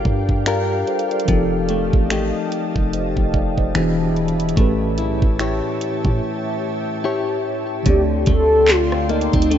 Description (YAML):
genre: contemporary R&B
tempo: 73 BPM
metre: 4/4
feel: swing 58% on 16ths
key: unclear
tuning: A4 = 437 Hz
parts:
  - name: mellow tine electric piano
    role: accompaniment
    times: 0.0-9.6 s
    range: A2 to G5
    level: -25 LUFS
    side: right 2 dB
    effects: medium stereo tremolo
  - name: ethereal airy pad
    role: sustained chords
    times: 0.0-9.6 s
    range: G4 to C6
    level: -26 LUFS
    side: equal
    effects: ensemble chorus, built-in reverb, sidechain pumping
  - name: direct-recorded clean electric guitar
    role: arpeggios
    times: 0.0-9.6 s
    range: D3 to C#5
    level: -23 LUFS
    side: left 6 dB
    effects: spring reverb, digital delay
  - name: warm 808-style bass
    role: bass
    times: 0.0-9.6 s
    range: E1 to A2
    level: -23 LUFS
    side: right 1 dB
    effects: none
  - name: smooth R&B drum kit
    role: drums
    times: 0.1-9.6 s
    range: finger snaps, handclaps, hi-hat, kick drum, rim click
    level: -21 LUFS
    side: right 1 dB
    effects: none
  - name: mellow horn-like synth lead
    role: melody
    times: 7.9-9.6 s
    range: D4 to A4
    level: -16 LUFS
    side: equal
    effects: chorus, digital delay
room: light reverb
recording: rough home demo mix, nothing above 7.7 kHz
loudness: -16 LUFS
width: side -10 dB against mid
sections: 0.0-7.9 A section; 7.9-9.6 B section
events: break 6.2-7.9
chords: 0.0 Gm7; 1.3 F9; 3.8 E7; 4.6 A7; 7.9 D7sus4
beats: 0.46 | 1.28 2.11 2.93 3.75 | 4.57 5.39 6.22 7.04 | 7.86 8.68 9.50